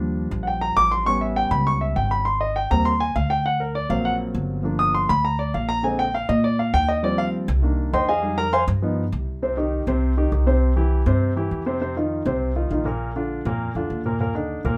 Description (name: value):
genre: Afro-Cuban jazz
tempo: 201 BPM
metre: 4/4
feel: straight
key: Eb major, C minor from 9.4 s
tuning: A4 = 436 Hz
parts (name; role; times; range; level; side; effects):
- warm grand piano; accompaniment; 0.0-14.8 s; Bb2 to Eb6; -24 LUFS; equal; none
- upright bass; bass; 0.0-14.8 s; G1 to Bb2; -26 LUFS; equal; none
room: moderate studio ambience, RT60 0.5 s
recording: none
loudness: -22 LUFS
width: mono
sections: 0.0-9.4 A section; 9.4-14.8 B section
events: grand piano solo 0.0-9.4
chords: 0.0 Ebmaj7; 1.1 A9; 2.3 Abmaj9; 3.5 Daug7; 4.6 Gm7; 5.8 Bb9; 7.0 Eb69; 7.6 Cm9; 8.2 Fm7; 8.8 Gaug7; 9.4 Cm; 10.6 C; 11.8 F5; 13.0 Bb; 14.2 Eb5